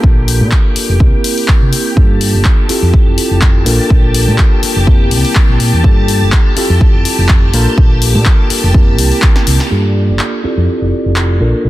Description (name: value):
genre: filtered disco house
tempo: 124 BPM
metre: 4/4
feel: swing 54% on 16ths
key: unclear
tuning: A4 = 442 Hz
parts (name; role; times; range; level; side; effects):
- mellow tine electric piano; accompaniment; 0.0-11.7 s; Bb3 to Bb4; -17 LUFS; right 1 dB; phaser, sidechain pumping, low-pass filter
- string machine, full ensemble; sustained chords; 0.0-11.7 s; G4 to D6; -21 LUFS; equal; ensemble chorus, sidechain pumping, low-pass filter
- hollow-body short-scale fingered electric bass; bass; 0.0-11.7 s; F1 to C3; -13 LUFS; equal; sidechain pumping, low-pass filter
- electronic kick drum; drums; 0.0-9.3 s; none; -9 LUFS; equal; none
- punchy analog drum machine; drums; 0.3-11.3 s; handclaps, hi-hat, snare drum; -18 LUFS; left 3 dB; sidechain pumping on hats
room: digital ambience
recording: dense, heavily limited modern master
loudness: -8 LUFS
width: side -16 dB against mid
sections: 0.0-9.7 A section; 9.7-11.7 B section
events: filter sweep 0.0-9.7, 9.7-11.7; drum fill 9.2-9.7; band accent 9.6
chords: 0.0 Bbmaj7; 1.0 C7; 2.0 Gm9; 2.7 Fmaj9; 3.7 Bbmaj7; 4.9 C7; 5.8 Gm9; 6.6 Fmaj9; 7.5 Bbmaj7; 8.7 C7; 9.7 Gm9; 10.4 Fmaj9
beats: | 0.04 0.52 1.00 1.49 | 1.97 2.46 2.94 3.42 | 3.91 4.39 4.88 5.36 | 5.84 6.33 6.81 7.29 | 7.78 8.26 8.75 9.23 | 9.71 10.20 10.68 11.17 | 11.65